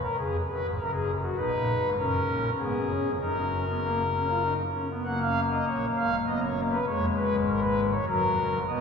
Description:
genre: classical, baroque-style 3-part fugue for pipe organ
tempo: 99 BPM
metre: 3/4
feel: straight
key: F# major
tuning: A4 = 437 Hz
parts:
  - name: pipe organ, foundations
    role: solo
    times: 0.0-8.8 s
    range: E#1 to F#5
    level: -25 LUFS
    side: left 1 dB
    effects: none
room: wet cathedral reverb, RT60 4.7 s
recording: recorded in a church or concert hall, studio reverb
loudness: -25 LUFS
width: side -6 dB against mid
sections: 0.0-5.1 A section; 5.1-8.7 B section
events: none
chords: 0.0 C#7 (rootless); 0.8 F#; 1.4 B; 2.0 F#; 2.6 C#7; 3.2 F#; 6.3 B/F#; 6.9 C#7/E#; 8.1 F#

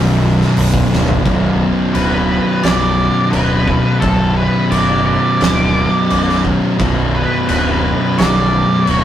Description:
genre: stoner and doom metal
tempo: 87 BPM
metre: 4/4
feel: straight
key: B minor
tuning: A4 = 440 Hz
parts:
  - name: string machine, cellos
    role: sustained chords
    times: 0.0-9.0 s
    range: none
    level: barely audible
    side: none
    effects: none
  - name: thick fuzz guitar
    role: riff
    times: 0.0-9.0 s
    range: B1 to B2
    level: -18 LUFS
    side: left 3 dB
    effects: distortion
  - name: thick fuzz guitar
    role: riff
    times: 0.0-9.0 s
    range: B1 to B2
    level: -17 LUFS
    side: right 2 dB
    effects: distortion
  - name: fuzz fingered electric bass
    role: bass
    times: 0.0-9.0 s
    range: B0 to F#1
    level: -20 LUFS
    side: equal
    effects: overdrive
  - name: oversized low-tuned drum kit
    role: drums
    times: 0.4-9.0 s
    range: crash cymbal, hi-hat, kick drum, snare drum, toms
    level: -20 LUFS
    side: equal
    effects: none
  - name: octave-fuzz lead guitar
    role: melody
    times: 1.9-9.0 s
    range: A4 to D5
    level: -18 LUFS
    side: equal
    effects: wah, distortion
room: moderate studio reverb, RT60 0.6 s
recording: rough rehearsal-room recording, tube saturation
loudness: -12 LUFS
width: side -11 dB against mid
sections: 0.0-1.3 A section; 1.3-9.0 B section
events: drum fill 0.9-1.3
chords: 0.0 Bm

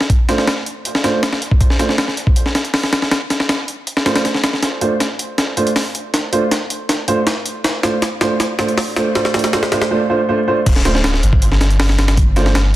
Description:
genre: drum and bass, jungle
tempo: 159 BPM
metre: 4/4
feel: straight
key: D minor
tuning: A4 = 440 Hz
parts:
  - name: breakbeat sampler-style drum kit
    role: drums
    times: 0.0-12.6 s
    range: crash cymbal, hi-hat, kick drum, snare drum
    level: -16 LUFS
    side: equal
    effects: small room ambience
  - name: warm concert grand piano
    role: stabs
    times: 0.3-12.5 s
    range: A3 to C5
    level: -19 LUFS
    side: right 2 dB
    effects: dub echo
  - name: soft dub sub bass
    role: bass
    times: 10.7-12.7 s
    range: D1 to G1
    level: -14 LUFS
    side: equal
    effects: tube saturation
room: moderate echo chamber reverb, RT60 1.2 s, digital ambience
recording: dense, heavily limited modern master, vinyl crackle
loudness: -14 LUFS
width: side -15 dB against mid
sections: 0.0-10.7 A section; 10.7-12.8 B section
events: build-up 0.0-10.7; drum fill 4.6-9.9; drop 10.7-12.8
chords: 0.0 Dm7; 10.7 N.C.

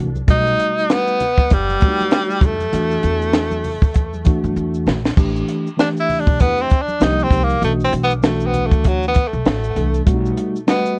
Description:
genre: hip hop, jazz-hop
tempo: 98 BPM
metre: 4/4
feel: swing 59% on 16ths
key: A dorian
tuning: A4 = 440 Hz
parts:
  - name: mellow tine electric piano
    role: accompaniment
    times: 0.0-11.0 s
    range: E3 to D#5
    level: -25 LUFS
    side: equal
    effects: none
  - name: upright bass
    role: bass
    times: 0.0-10.3 s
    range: F#1 to G2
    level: -25 LUFS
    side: equal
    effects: none
  - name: congas and maracas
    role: percussion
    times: 0.2-11.0 s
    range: none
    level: -35 LUFS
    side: equal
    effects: none
  - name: bright tenor saxophone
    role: melody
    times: 0.3-11.0 s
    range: F#3 to E4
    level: -22 LUFS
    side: equal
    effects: analog delay
  - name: compact cocktail drum kit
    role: drums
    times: 0.3-10.8 s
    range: crash cymbal, hi-hat, kick drum, snare drum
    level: -18 LUFS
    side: equal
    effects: none
room: light reverb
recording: cassette tape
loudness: -17 LUFS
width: mono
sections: 0.0-5.2 A section; 5.2-11.0 B section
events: drum fill 4.6-5.2; tenor saxophone solo 5.2-11.0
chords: 0.3 B7b13; 2.7 E9sus4; 5.2 A7sus4; 7.0 Cm7; 7.6 Bm7; 10.1 B7b13

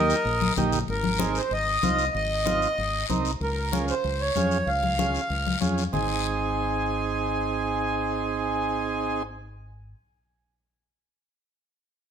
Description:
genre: latin, cumbia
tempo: 190 BPM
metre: 4/4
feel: straight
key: Ab major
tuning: A4 = 440 Hz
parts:
  - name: accordion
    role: melody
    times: 0.0-9.2 s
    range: Bb4 to Ab5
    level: -27 LUFS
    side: equal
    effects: plate reverb
  - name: combo organ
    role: accompaniment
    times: 0.0-9.2 s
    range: Bb3 to Bb4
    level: -28 LUFS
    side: right 7 dB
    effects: none
  - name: deep dub fingered electric bass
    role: bass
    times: 0.0-9.9 s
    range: Ab1 to F2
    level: -31 LUFS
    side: left 1 dB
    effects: none
  - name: guiro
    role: percussion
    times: 0.1-6.0 s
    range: none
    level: -35 LUFS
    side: left 9 dB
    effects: none
  - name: congas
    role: percussion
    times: 0.4-6.0 s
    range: none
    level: -30 LUFS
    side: left 5 dB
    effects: none
room: moderate large studio reverb, RT60 1.0 s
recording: none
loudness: -23 LUFS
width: side -8 dB against mid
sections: 0.9-5.9 A section; 5.9-8.5 B section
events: none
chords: 0.0 Eb; 0.9 Ab; 3.4 Db; 5.9 Ab

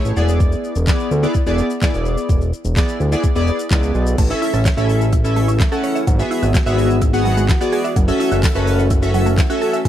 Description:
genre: dance-pop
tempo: 127 BPM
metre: 4/4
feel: straight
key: unclear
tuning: A4 = 440 Hz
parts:
  - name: chorused retro synth keys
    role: accompaniment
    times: 0.0-9.8 s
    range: A3 to F#5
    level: -20 LUFS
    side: left 1 dB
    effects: sidechain pumping
  - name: fat analog bass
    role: bass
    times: 0.1-9.9 s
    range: E1 to D2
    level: -18 LUFS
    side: equal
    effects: sidechain pumping
  - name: smooth R&B drum kit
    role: drums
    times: 0.1-9.9 s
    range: crash cymbal, handclaps, hi-hat, kick drum, shaker, snare drum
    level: -18 LUFS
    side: equal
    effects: none
  - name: mellow French horn section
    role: sustained chords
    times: 4.2-9.9 s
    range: C#3 to G#4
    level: -27 LUFS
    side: right 1 dB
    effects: sidechain pumping
  - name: mallet-like synth pluck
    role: arpeggios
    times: 4.2-9.9 s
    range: F#3 to E5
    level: -26 LUFS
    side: right 3 dB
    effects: chorus, sidechain pumping, tape echo
  - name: tambourine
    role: percussion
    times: 8.4-9.5 s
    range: none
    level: -36 LUFS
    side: left 5 dB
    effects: none
room: little or no reverb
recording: dark, warm production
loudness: -14 LUFS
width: side -11 dB against mid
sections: 0.0-4.2 A section; 4.2-9.9 B section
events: none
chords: 0.2 E7; 4.2 A; 6.1 Eadd9/G#; 8.0 F#m7

